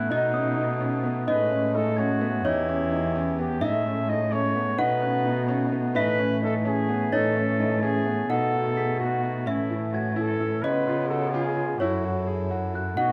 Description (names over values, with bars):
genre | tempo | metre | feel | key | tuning
contemporary instrumental, chamber music in an uneven meter | 256 BPM (eighths) | 5/8 | straight | A lydian | A4 = 440 Hz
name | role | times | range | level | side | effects
warm flugelhorn | melody | 0.0-13.1 s | D#4 to E5 | -32 LUFS | equal | none
worn celesta | second line | 0.0-13.1 s | C#5 to F#5 | -32 LUFS | equal | none
pedal harmonium | sustained chords | 0.0-13.1 s | C#3 to A4 | -35 LUFS | equal | none
warm grand piano | arpeggios | 0.0-13.1 s | B3 to G#4 | -32 LUFS | equal | none
dark cello | bass | 0.0-13.1 s | E2 to C#3 | -31 LUFS | equal | none
glockenspiel with rubber mallets | texture | 0.0-2.6, 5.0-13.1 s | D#6 to B6 | -38 LUFS | equal | none
room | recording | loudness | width
moderate concert hall reverb, RT60 2.1 s | close, detailed microphones | -25 LUFS | mono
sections
0.0-8.3 A section; 8.3-13.1 B section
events
none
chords
0.1 B7; 1.3 Amaj7; 2.4 Em6; 3.6 Amaj7; 4.8 B7; 6.0 Amaj7; 8.3 B7; 9.5 Amaj7; 10.6 C#7; 11.8 F#m7